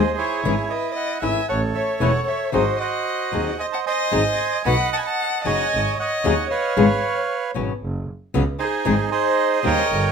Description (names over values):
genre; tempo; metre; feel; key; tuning
tango; 114 BPM; 4/4; rubato; unclear; A4 = 440 Hz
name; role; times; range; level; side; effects
bandoneon; melody; 0.0-10.1 s; D#4 to B5; -22 LUFS; right 8 dB; none
warm violin; second line; 0.0-10.1 s; G#4 to G#5; -25 LUFS; left 6 dB; none
clear double bass; bass; 0.0-10.1 s; E1 to D#2; -24 LUFS; right 2 dB; none
flamenco guitar; accompaniment; 0.5-9.8 s; B2 to G#4; -22 LUFS; left 6 dB; none
room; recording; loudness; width
moderate studio reverb, RT60 0.7 s; minimal, uncompressed stereo recording; -19 LUFS; side -6 dB against mid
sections
0.0-10.1 A section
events
none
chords
0.4 C#madd9/G#; 1.5 A; 2.5 G#7; 4.7 B; 5.7 G#7sus4; 6.8 C#7/G#; 7.8 F#sus4; 8.9 G#